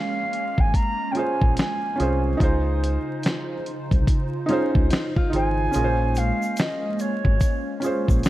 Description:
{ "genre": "lo-fi hip hop", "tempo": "72 BPM", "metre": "4/4", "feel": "swing 63% on 16ths", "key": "Bb minor", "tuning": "A4 = 440 Hz", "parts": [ { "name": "concert flute", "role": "melody", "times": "0.0-7.8 s", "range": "Db5 to Bb5", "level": "-28 LUFS", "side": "right 1 dB", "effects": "analog delay" }, { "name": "felt-muted upright piano", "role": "accompaniment", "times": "0.0-8.3 s", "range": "Db4 to Db5", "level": "-27 LUFS", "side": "right 2 dB", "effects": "none" }, { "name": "hollow soft pad", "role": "sustained chords", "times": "0.0-8.3 s", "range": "Db3 to C5", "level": "-31 LUFS", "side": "right 1 dB", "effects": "ensemble chorus" }, { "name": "dusty soul sampler-style drum kit", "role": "drums", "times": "0.3-8.3 s", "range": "finger snaps, hi-hat, kick drum, snare drum", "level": "-22 LUFS", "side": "equal", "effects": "none" }, { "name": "deep dub fingered electric bass", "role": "bass", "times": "0.6-8.2 s", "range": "Ab1 to Db2", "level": "-24 LUFS", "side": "equal", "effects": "none" }, { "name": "nylon-string guitar", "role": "second line", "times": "4.5-5.7 s", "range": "Db4 to F4", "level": "-29 LUFS", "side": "left 2 dB", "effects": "none" }, { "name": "tube shaker", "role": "percussion", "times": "5.7-8.3 s", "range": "none", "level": "-45 LUFS", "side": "left 6 dB", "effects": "none" } ], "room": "light reverb, small room ambience", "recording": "vinyl crackle", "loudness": "-20 LUFS", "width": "side -15 dB against mid", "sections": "0.0-8.3 A section", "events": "kick muted 5.7-6.6", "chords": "0.0 Bbm9; 2.4 Dbmaj9; 5.7 Bbm9" }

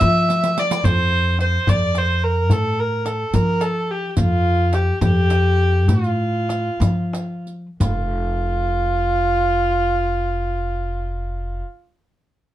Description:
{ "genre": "Persian modal ensemble", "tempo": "58-72 BPM (dotted quarters)", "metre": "6/8", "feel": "straight", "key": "F dastgah mahur", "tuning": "A4 = 440 Hz", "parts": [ { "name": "rich kamancheh", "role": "melody", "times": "0.0-11.6 s", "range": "F4 to E5", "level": "-21 LUFS", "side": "equal", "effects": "none" }, { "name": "upright bass", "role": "bass", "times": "0.0-11.6 s", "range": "F1 to F3", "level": "-21 LUFS", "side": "equal", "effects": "none" }, { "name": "riq", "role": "percussion", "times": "0.0-8.1 s", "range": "none", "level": "-29 LUFS", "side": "right 5 dB", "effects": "none" }, { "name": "tombak", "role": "percussion", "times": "0.0-8.1 s", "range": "none", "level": "-21 LUFS", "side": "left 1 dB", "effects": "none" } ], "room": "light reverb", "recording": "dark, warm production", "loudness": "-17 LUFS", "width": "side -13 dB against mid", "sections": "0.0-7.8 A section; 7.8-12.0 B section", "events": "drum fill 0.3-0.9; slowing down 4.2-7.8", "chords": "none" }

